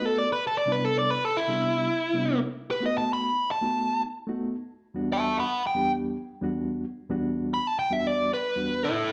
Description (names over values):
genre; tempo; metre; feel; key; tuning
blues; 112 BPM; 4/4; swing 53% on 16ths; E minor; A4 = 439 Hz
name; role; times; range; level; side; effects
biting overdriven guitar; melody; 0.0-9.1 s; E4 to B5; -28 LUFS; equal; plate reverb, slapback echo
reed electric piano; accompaniment; 0.0-8.8 s; E2 to G4; -32 LUFS; equal; overdrive, medium tremolo, plate reverb, slapback echo
room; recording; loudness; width
wet club reverb, RT60 0.8 s; live gig heard through the venue's PA, club ambience; -27 LUFS; mono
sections
0.0-8.8 A section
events
none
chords
0.3 Cmaj7; 2.4 B7; 4.5 Em9